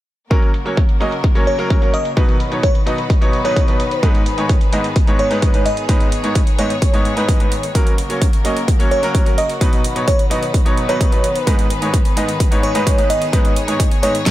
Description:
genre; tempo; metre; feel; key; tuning
EDM, festival progressive house; 129 BPM; 4/4; straight; G# minor; A4 = 440 Hz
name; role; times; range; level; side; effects
bright concert grand piano; accompaniment; 0.3-14.1 s; G#2 to D#5; -20 LUFS; right 1 dB; sidechain pumping
rich chamber string section; sustained chords; 0.3-14.3 s; C#3 to C#5; -25 LUFS; left 2 dB; sidechain pumping
big-room dance drum kit; drums; 0.3-14.3 s; hi-hat, snare drum; -26 LUFS; right 2 dB; low-pass filter on hats, low-pass filter on snare, low-pass filter on room
electronic kick drum; drums; 0.3-14.3 s; none; -15 LUFS; equal; none
bell-like FM electric piano; melody; 1.5-14.3 s; C#5 to D#5; -22 LUFS; equal; chorus, dub echo
swell; sound effects; 14.3 s; none; barely audible; none; none
room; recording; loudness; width
digital ambience; none; -14 LUFS; side -15 dB against mid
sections
0.3-14.3 A section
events
none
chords
0.3 F#; 2.2 B; 4.0 G#m; 7.8 F#; 9.6 B; 11.5 G#m

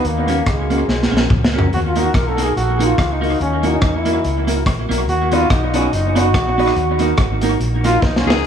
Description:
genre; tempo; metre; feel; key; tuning
ska; 143 BPM; 4/4; swing 57% on 8ths; unclear; A4 = 439 Hz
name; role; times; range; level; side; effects
bright trombone; melody; 0.0-8.5 s; Ab3 to Bb4; -20 LUFS; equal; tape echo
hollow-body short-scale fingered electric bass; bass; 0.0-8.4 s; F#1 to Fb2; -20 LUFS; equal; none
crunchy breakbeat drum kit; drums; 0.0-8.5 s; hi-hat, kick drum, rim click, snare drum, toms; -20 LUFS; equal; tape echo
clean electric guitar; accompaniment; 0.3-8.4 s; Bb3 to Gb4; -22 LUFS; right 5 dB; tape echo
dark upright piano; stabs; 0.3-8.4 s; Db4 to B4; -24 LUFS; left 4 dB; tape echo
raspy tenor saxophone; melody; 8.3-8.5 s; Ab4; -20 LUFS; left 10 dB; none
room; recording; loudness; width
light reverb; small room ambience; -14 LUFS; side -8 dB against mid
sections
0.0-8.4 A section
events
trombone solo 0.0-8.4; drum fill 0.9-1.7, 8.0-8.4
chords
0.0 Gb; 3.4 Gb7/Eb; 5.1 B; 6.8 Ebm

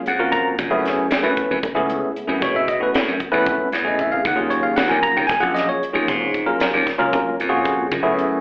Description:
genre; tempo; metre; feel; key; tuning
electric jazz fusion; 229 BPM (eighths); 7/8; straight; Eb minor; A4 = 440 Hz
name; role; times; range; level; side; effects
bell-like tine electric piano; accompaniment; 0.0-8.4 s; Gb3 to Bb5; -19 LUFS; equal; medium stereo tremolo, slapback echo
slap bass; bass; 0.1-8.4 s; Bb1 to Cb3; -21 LUFS; equal; none
tight funk drum kit; drums; 0.1-8.3 s; hi-hat, kick drum, snare drum; -24 LUFS; equal; none
congas; percussion; 0.6-8.2 s; none; -30 LUFS; equal; slapback echo
room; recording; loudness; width
light reverb; live gig heard through the venue's PA, club reverb, telephone sound; -17 LUFS; side -26 dB against mid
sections
0.0-8.4 A section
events
drum fill 3.9-4.3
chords
0.0 Ebm9 (rootless); 0.6 Gbm11; 4.3 Ebm11

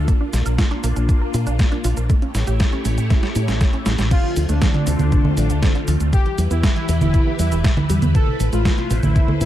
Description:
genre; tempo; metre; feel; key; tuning
italo disco; 119 BPM; 4/4; straight; D dorian from 4.1 s; A4 = 439 Hz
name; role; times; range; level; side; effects
phased string machine; sustained chords; 0.0-9.5 s; D3 to C#5; -26 LUFS; left 1 dB; ensemble chorus, phaser
fingered electric bass with an envelope filter; bass; 0.0-9.5 s; E1 to Bb2; -20 LUFS; equal; tube saturation
wide unison pluck; arpeggios; 0.1-9.5 s; B2 to Bb4; -27 LUFS; right 4 dB; digital delay
detuned 8-bit digital drum machine; drums; 0.1-9.5 s; cabasa, congas, crash cymbal, hi-hat, snare drum; -24 LUFS; right 2 dB; overdrive, small room ambience
electronic kick drum; drums; 0.1-9.3 s; none; -17 LUFS; equal; overdrive, small room ambience
analog synth brass; melody; 4.1-9.5 s; D4 to A4; -26 LUFS; left 1 dB; chorus, digital delay
room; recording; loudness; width
little or no reverb; dark, warm production; -16 LUFS; side -12 dB against mid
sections
0.0-4.1 A section; 4.1-9.5 B section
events
drum fill 3.1-4.1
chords
0.1 Bb; 2.1 A7; 4.1 Dm7; 6.1 Em; 8.1 Amadd9

